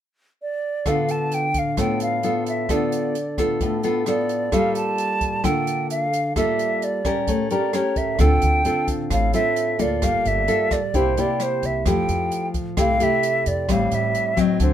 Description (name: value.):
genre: bossa nova.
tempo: 131 BPM.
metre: 4/4.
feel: straight.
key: D minor.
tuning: A4 = 438 Hz.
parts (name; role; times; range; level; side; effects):
hollow concert flute; melody; 0.4-14.7 s; C5 to A5; -23 LUFS; right 2 dB; none.
nylon-string guitar; accompaniment; 0.9-14.7 s; A2 to Bb4; -22 LUFS; left 2 dB; none.
open jazz drum kit; drums; 0.9-14.7 s; hi-hat, kick drum, rim click; -28 LUFS; right 1 dB; none.
upright bass; bass; 8.2-14.7 s; G1 to F2; -23 LUFS; equal; none.
room: moderate studio reverb, RT60 0.6 s.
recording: minimal, uncompressed stereo recording.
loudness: -19 LUFS.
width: side -10 dB against mid.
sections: 0.9-8.2 A section; 8.2-14.7 B section.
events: none.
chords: 0.0 N.C.; 0.9 Dm6; 4.5 Gm9; 7.3 A7b9; 8.2 Dm7; 10.0 Gm9; 10.9 C7; 11.9 Fmaj9; 13.7 Am7.